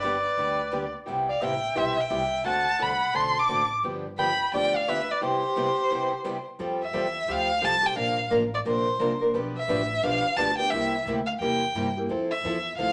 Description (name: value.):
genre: acoustic string swing (jazz manouche).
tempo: 174 BPM.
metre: 4/4.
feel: swing 62% on 8ths.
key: C major, F major from 6.6 s.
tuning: A4 = 440 Hz.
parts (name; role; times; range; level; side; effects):
warm violin; melody; 0.0-12.9 s; C5 to D6; -29 LUFS; equal; none.
warm soprano saxophone; second line; 0.0-6.4 s; G4 to A5; -31 LUFS; equal; none.
picked acoustic archtop guitar; accompaniment; 0.0-12.9 s; B2 to B4; -31 LUFS; equal; none.
picked steel-string acoustic guitar; accompaniment; 0.0-12.9 s; B2 to B4; -41 LUFS; equal; none.
upright bass; bass; 0.0-12.9 s; G1 to G2; -41 LUFS; equal; none.
room: wet studio reverb, RT60 0.7 s.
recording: none.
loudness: -26 LUFS.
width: mono.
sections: 0.0-6.6 A section; 6.6-12.9 B section.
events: none.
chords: 0.0 G; 1.1 Cmaj7; 2.5 D7; 3.8 G7; 5.2 Cmaj7; 6.6 Fadd9; 8.0 Bbadd9; 9.3 G7; 10.7 C7; 12.1 Fmaj7.